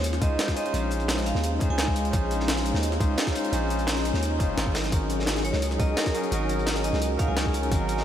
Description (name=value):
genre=liquid drum and bass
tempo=172 BPM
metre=4/4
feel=straight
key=Bb minor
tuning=A4 = 437 Hz
part: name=vibraphone with hard mallets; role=melody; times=0.0-2.1, 5.4-7.8 s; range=Bb4 to Ab5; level=-34 LUFS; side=right 1 dB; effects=tape echo
part: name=barky tine electric piano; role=accompaniment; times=0.0-8.0 s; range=Db4 to C5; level=-30 LUFS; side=equal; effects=medium stereo tremolo, ping-pong delay
part: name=warm analog pad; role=sustained chords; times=0.0-8.0 s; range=Gb3 to C5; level=-31 LUFS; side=left 1 dB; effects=chorus
part: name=long sustained 808-style bass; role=bass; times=0.0-8.0 s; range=F1 to Eb2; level=-28 LUFS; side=equal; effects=none
part: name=crunchy breakbeat drum kit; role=drums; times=0.0-8.0 s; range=hi-hat, snare drum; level=-35 LUFS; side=equal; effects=high-pass filter on hats, high-pass filter on snare, high-pass filter on room
part: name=jungle sampler-style drum kit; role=drums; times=0.0-8.0 s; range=hi-hat, snare drum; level=-31 LUFS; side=equal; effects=overdrive
part: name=electronic kick drum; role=drums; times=0.2-7.8 s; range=none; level=-27 LUFS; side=equal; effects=none
room=moderate huge ambient reverb, RT60 4.8 s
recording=dreamy mix soaked in reverb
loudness=-23 LUFS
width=side -10 dB against mid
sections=0.0-8.0 A section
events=none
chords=0.0 Bbm11; 4.8 Ab7sus4